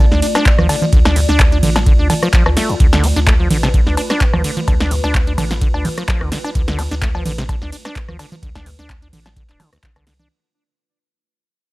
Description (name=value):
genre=acid house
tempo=128 BPM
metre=4/4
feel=swing 54% on 16ths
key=D dorian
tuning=A4 = 442 Hz
part: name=dark analog pad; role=sustained chords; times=0.0-10.3 s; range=A3 to D5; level=-26 LUFS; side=equal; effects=chorus, phaser, sidechain pumping
part: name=acid bass, saw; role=riff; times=0.0-10.3 s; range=D2 to D4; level=-22 LUFS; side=equal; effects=analog delay
part: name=warm sub bass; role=bass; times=0.0-10.3 s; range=D1 to D2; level=-19 LUFS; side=equal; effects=sidechain pumping
part: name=electro analog drum machine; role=drums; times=0.1-10.3 s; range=congas, cowbell, handclaps, hi-hat, ride cymbal, rim click, shaker, snare drum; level=-19 LUFS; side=equal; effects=studio reverb
part: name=electronic kick drum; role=drums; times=0.5-9.9 s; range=none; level=-14 LUFS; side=equal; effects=studio reverb
room=little or no reverb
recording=dry, gritty hardware recording, transformer saturation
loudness=-12 LUFS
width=side -20 dB against mid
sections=0.0-10.3 A section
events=drop 0.0-10.3; fade-out 2.8-10.3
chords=0.0 Dm